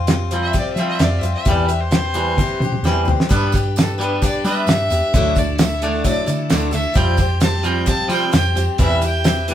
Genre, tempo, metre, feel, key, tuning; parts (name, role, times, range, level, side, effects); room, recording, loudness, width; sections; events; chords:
folk rock and heartland rock; 131 BPM; 4/4; straight; A4 = 442 Hz
picked swing-style acoustic guitar; accompaniment; 0.0-9.5 s; D3 to C5; -24 LUFS; left 4 dB
twangy electric guitar; riff; 0.0-9.5 s; E2 to D4; -24 LUFS; right 2 dB
hollow-body short-scale picked electric bass; bass; 0.0-9.5 s; D2 to G3; -22 LUFS; equal
damped 70s drum kit; drums; 0.1-9.5 s; hi-hat, kick drum, snare drum, toms; -18 LUFS; equal
clear fiddle; melody; 0.4-9.5 s; A4 to A5; -23 LUFS; equal
tonewheel organ; sustained chords; 3.3-9.5 s; E3 to B4; -31 LUFS; right 2 dB; slow rotary speaker, overdrive, chorus vibrato
tambourine; percussion; 3.3-9.4 s; -35 LUFS; right 7 dB
wet studio ambience, RT60 0.5 s; band playing live in one room; -15 LUFS; side -11 dB against mid
0.0-9.5 A section
fiddle solo 0.0-9.5; drum fill 2.4-3.3
0.0 Fsus2; 1.5 Cmaj7/E; 3.3 G; 5.1 Dadd9; 7.0 Fsus2; 8.8 Cmaj7/E